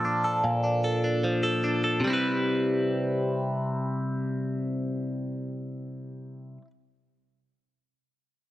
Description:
indie pop; 150 BPM; 4/4; straight; C major; A4 = 440 Hz
direct-recorded clean electric guitar; solo; 0.0-6.7 s; Bb2 to B4; -25 LUFS; equal; phaser, slapback echo
light reverb; -25 LUFS; side -15 dB against mid
0.0-2.0 A section; 2.0-5.2 B section
0.0 Bbmaj7; 2.0 Cmaj7
0.05 | 0.45 0.85 1.25 1.65 | 2.05 2.45 2.85 3.25 | 3.64 4.04 4.44 4.84

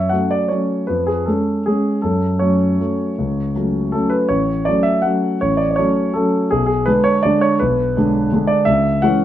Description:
classical, piano waltz; 162 BPM; 3/4; uneven beats, rubato; F# minor; A4 = 441 Hz
warm concert grand piano; solo; 0.0-9.2 s; A1 to F#5; -15 LUFS; equal
moderate large studio reverb, RT60 0.9 s; -15 LUFS; side -12 dB against mid
0.0-9.2 A section
0.0 F#m; 0.9 C#/E#; 2.0 F#m; 4.3 F#m/A; 6.5 G#dim/B; 8.7 C#m
0.14 0.53 | 0.90 1.27 1.66 | 2.03 2.41 2.79 | 3.17 3.55 3.93 | 4.30 4.67 5.04 | 5.42 5.79 6.17 | 6.52 6.87 7.25 | 7.61 7.97 8.33 | 8.69 9.04

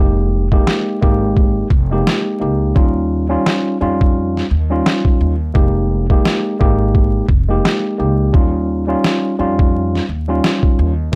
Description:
hip hop, boom-bap hip-hop; 86 BPM; 4/4; swing 58% on 16ths; A4 = 440 Hz
tine electric piano; accompaniment; 0.0-11.2 s; G3 to G4; -20 LUFS; equal; high-pass filter, low-pass filter
upright bass; bass; 0.0-11.1 s; F1 to F2; -20 LUFS; equal; tube saturation
boom bap sampler-style drum kit; drums; 0.5-11.2 s; hi-hat, kick drum, snare drum; -16 LUFS; equal
little or no reverb; dry, gritty hardware recording, transformer saturation, vinyl crackle; -15 LUFS; mono
0.0-11.2 A section
break 0.0-11.1
0.0 Fm11; 2.8 Eb9; 5.5 Fm11; 8.3 Eb9
0.67 1.36 2.06 | 2.76 3.46 4.16 4.85 | 5.55 6.25 6.95 7.64 | 8.34 9.04 9.74 10.43 | 11.13

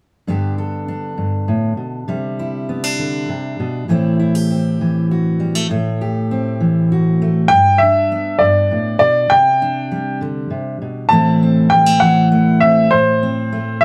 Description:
folk; 66 BPM (dotted quarters); 6/8; straight; G major; A4 = 444 Hz
fingerpicked steel-string acoustic guitar; accompaniment; 0.3-13.8 s; G2 to A4; -19 LUFS; equal
bright upright piano; melody; 7.5-13.8 s; C5 to A5; -15 LUFS; equal
little or no reverb; -16 LUFS; mono
0.3-7.5 A section; 7.5-13.8 B section
0.3 G; 2.1 Cadd9; 3.9 Am; 7.5 G; 9.3 Csus2; 11.1 Am
| 0.28 1.18 | 2.08 2.99 | 3.89 4.79 | 5.70 6.60 | 7.50 8.40 | 9.31 10.21 | 11.11 12.02 | 12.92 13.82

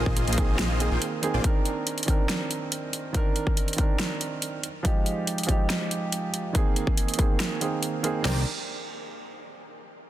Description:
future bass; 141 BPM; 4/4; half-time; C minor; A4 = 440 Hz
warm baby grand piano; accompaniment; 0.0-8.4 s; Eb3 to Bb4; -30 LUFS; right 3 dB; sidechain pumping, tape echo
dense compressed supersaw; riff; 0.0-1.4, 8.3-8.4 s; Bb3 to G5; -34 LUFS; equal; sidechain pumping, tape echo
fat analog bass; bass; 0.0-1.4, 8.3-8.4 s; Bb1 to C2; -26 LUFS; equal; sidechain pumping
big-room dance drum kit; drums; 0.1-8.4 s; crash cymbal, kick drum, snare drum; -25 LUFS; equal; overdrive
big-room dance drum kit; drums; 0.2-8.1 s; hi-hat, snare drum; -31 LUFS; equal; overdrive
little or no reverb; dense, heavily limited modern master; -24 LUFS; side -13 dB against mid
0.0-8.3 A section; 8.3-10.0 B section
0.0 Bb9sus4; 1.4 Cm9; 4.6 Fm9; 6.5 Bb9sus4; 8.3 Cm9
0.17 0.59 1.02 | 1.44 1.87 2.29 2.72 | 3.15 3.57 4.00 4.42 | 4.85 5.27 5.70 6.12 | 6.55 6.97 7.40 7.83 | 8.25

